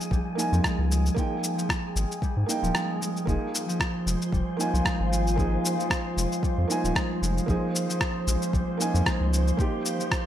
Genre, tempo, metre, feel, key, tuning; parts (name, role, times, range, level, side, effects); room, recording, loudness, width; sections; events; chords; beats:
organic downtempo; 114 BPM; 4/4; swing 55% on 16ths; F minor; A4 = 440 Hz
felt-muted upright piano; accompaniment; 0.0-10.3 s; Bb3 to Ab5; -32 LUFS; right 3 dB; sidechain pumping, tape echo
concert harp; arpeggios; 0.0-10.3 s; F3 to Ab3; -30 LUFS; equal; tape echo
electronic cabasa and rim click; drums; 0.0-10.2 s; -31 LUFS; left 1 dB; studio reverb
wind-like tuned noise texture; texture; 0.0-10.3 s; Ab4 to C6; -38 LUFS; left 2 dB; built-in reverb
round analog bass; bass; 0.1-9.5 s; Eb1 to Ab2; -25 LUFS; equal
electronic kick drum; drums; 0.1-10.2 s; -28 LUFS; equal; studio reverb
warbly tape-like pad; sustained chords; 4.0-10.3 s; Bb3 to Ab5; -33 LUFS; equal; chorus, built-in reverb, sidechain pumping
light reverb; -24 LUFS; side -11 dB against mid
0.0-10.3 A section
0.0 Bbm7; 1.2 Ab5; 3.3 Fm7; 7.5 Bbm7; 9.6 Abmaj7 (rootless)
0.12 0.64 | 1.17 1.69 2.22 2.75 | 3.27 3.80 4.33 4.85 | 5.38 5.91 6.43 6.96 | 7.48 8.01 8.54 9.06 | 9.59 10.12